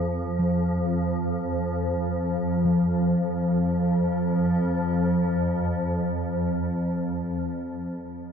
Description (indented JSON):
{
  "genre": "dark ambient drone",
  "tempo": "free time",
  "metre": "none",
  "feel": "none",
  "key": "unclear",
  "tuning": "A4 = 439 Hz",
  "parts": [
    { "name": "swarming drone", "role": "drone", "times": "0.0-6.5 s", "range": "F2 to F3", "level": "-24 LUFS", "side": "equal", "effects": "built-in reverb" },
    { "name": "gamelan-type bossed gongs", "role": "arpeggios", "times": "0.4-6.5 s", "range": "F3", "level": "-28 LUFS", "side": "equal", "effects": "ping-pong delay" }
  ],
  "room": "wet huge ambient reverb, RT60 8.1 s",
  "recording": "dark, warm production, faint mains hum",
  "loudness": "-23 LUFS",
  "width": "side -7 dB against mid",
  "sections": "0.0-2.7 A section; 2.7-7.2 B section",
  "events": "none",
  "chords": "none",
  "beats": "free time"
}